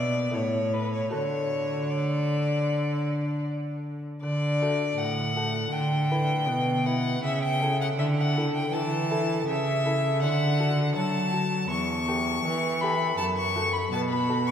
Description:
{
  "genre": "classical, baroque-style sonata movement with continuo",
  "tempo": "80 BPM",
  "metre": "4/4",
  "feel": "rubato",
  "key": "D major",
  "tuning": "A4 = 440 Hz",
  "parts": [
    { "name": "clear violin", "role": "melody", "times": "0.0-14.5 s", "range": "B4 to C#6", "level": "-28 LUFS", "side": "left 2 dB", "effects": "none" },
    { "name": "lute", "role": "accompaniment", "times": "0.0-14.5 s", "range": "E2 to B4", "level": "-32 LUFS", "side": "left 1 dB", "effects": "none" },
    { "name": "clear cello", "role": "bass", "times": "0.0-14.5 s", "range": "E2 to F#3", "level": "-27 LUFS", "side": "right 1 dB", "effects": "none" }
  ],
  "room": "wet church reverb, RT60 3.5 s",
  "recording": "none",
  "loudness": "-24 LUFS",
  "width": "side -8 dB against mid",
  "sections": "0.0-4.2 A section; 4.2-14.5 B section",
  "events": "none",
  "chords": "0.4 A; 1.1 D; 5.7 Em7/D; 7.2 A/C#; 10.2 D; 11.7 A7/E; 13.2 D/F# (rootless)"
}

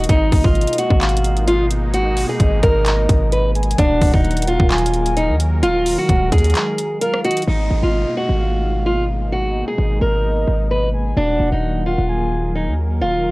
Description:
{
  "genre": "hip hop, trap",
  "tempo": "130 BPM",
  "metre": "4/4",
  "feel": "half-time",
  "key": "unclear",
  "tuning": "A4 = 441 Hz",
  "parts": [
    { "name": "fingerpicked old ladder-braced acoustic guitar", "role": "melody", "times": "0.0-13.3 s", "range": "D4 to Cb5", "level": "-20 LUFS", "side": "equal", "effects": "low-pass filter" },
    { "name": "soft octave-layered synth lead", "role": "second line", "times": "0.0-13.0 s", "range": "Eb5 to Ab5", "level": "-26 LUFS", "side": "equal", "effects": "chorus, phaser, tape echo" },
    { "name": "sweeping resonant pad", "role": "sustained chords", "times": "0.0-13.3 s", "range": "Cb3 to Bb4", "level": "-27 LUFS", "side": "equal", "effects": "chorus" },
    { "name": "hard-hitting 808-style bass", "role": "bass", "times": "0.0-13.3 s", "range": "Eb1 to Eb2", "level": "-18 LUFS", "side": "equal", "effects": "none" },
    { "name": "trap drum kit", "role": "drums", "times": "0.0-7.5 s", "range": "handclaps, hi-hat, kick drum, rim click", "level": "-18 LUFS", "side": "equal", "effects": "none" },
    { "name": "downlifter", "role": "sound effects", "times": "7.5-11.2 s", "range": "none", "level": "-34 LUFS", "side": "right 4 dB", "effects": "none" }
  ],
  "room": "digital ambience",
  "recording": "dry, gritty hardware recording, cassette tape",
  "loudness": "-15 LUFS",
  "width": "side -22 dB against mid",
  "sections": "0.0-7.5 A section; 7.5-13.3 B section",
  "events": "break 6.6-7.5",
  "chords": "0.1 Abmadd9; 3.8 Ebm; 7.5 Abmadd9; 11.2 Ebm"
}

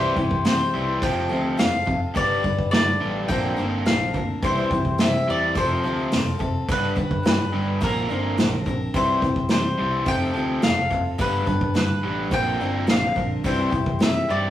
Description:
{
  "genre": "folk rock and heartland rock",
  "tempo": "106 BPM",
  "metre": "4/4",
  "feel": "straight",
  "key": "C major",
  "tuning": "A4 = 440 Hz",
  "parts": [
    { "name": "mandolin", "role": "melody", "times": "0.0-14.5 s", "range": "Bb4 to G5", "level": "-25 LUFS", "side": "left 2 dB", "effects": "none" },
    { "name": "picked steel-string acoustic guitar", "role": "accompaniment", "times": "0.0-14.5 s", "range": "G2 to B4", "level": "-28 LUFS", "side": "left 2 dB", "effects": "none" },
    { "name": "overdriven electric guitar", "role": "riff", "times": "0.0-14.5 s", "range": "F2 to Bb3", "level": "-27 LUFS", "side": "right 1 dB", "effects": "none" },
    { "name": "fingered electric bass", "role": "bass", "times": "0.0-14.5 s", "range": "F1 to C3", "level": "-29 LUFS", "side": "equal", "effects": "none" },
    { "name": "unplugged drum kit", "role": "drums", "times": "0.2-14.1 s", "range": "hi-hat, kick drum, snare drum", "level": "-24 LUFS", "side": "equal", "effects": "none" }
  ],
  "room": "wet studio reverb, RT60 0.5 s",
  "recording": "rough rehearsal-room recording, warm saturation, studio reverb",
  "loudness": "-20 LUFS",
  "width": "side -12 dB against mid",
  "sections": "0.0-14.5 A section",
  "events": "none",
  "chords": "0.0 C; 1.0 F; 2.2 G; 3.3 Bbadd9; 4.4 C; 5.6 F; 6.7 G; 7.8 Bbadd9; 8.9 C; 10.1 F; 11.2 G; 12.3 Bbadd9; 13.4 C"
}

